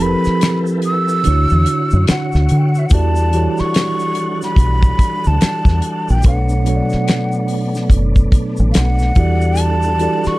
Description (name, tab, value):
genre	R&B, neo-soul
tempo	72 BPM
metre	4/4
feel	swing 60% on 16ths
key	E dorian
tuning	A4 = 440 Hz
part	breathy mellow jazz flute	melody	0.0-10.4 s	E5 to E6	-21 LUFS	right 1 dB	slapback echo
part	mellow tine electric piano	accompaniment	0.0-10.4 s	B2 to D5	-20 LUFS	right 1 dB	slow stereo tremolo, plate reverb
part	tonewheel organ	sustained chords	0.0-10.4 s	D3 to F#5	-25 LUFS	equal	fast rotary speaker, chorus vibrato, plate reverb
part	deep dub fingered electric bass	bass	0.0-10.3 s	F1 to D3	-15 LUFS	equal	none
part	egg shaker and finger snaps	percussion	0.0-10.4 s	none	-34 LUFS	left 3 dB	none
part	damped 70s drum kit	drums	0.3-10.3 s	finger snaps, hi-hat, kick drum, snare drum	-14 LUFS	equal	none
room	light reverb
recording	dark, warm production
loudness	-13 LUFS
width	side -19 dB against mid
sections	0.0-2.9 A section; 2.9-10.4 A section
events	break 0.0-2.9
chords	0.0 Fmaj9#11; 1.2 Dmaj9; 2.9 Em11; 6.2 Bm7; 9.2 Em11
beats	0.41 1.24 2.08 | 2.91 3.74 4.58 5.41 | 6.24 7.08 7.91 8.74 | 9.58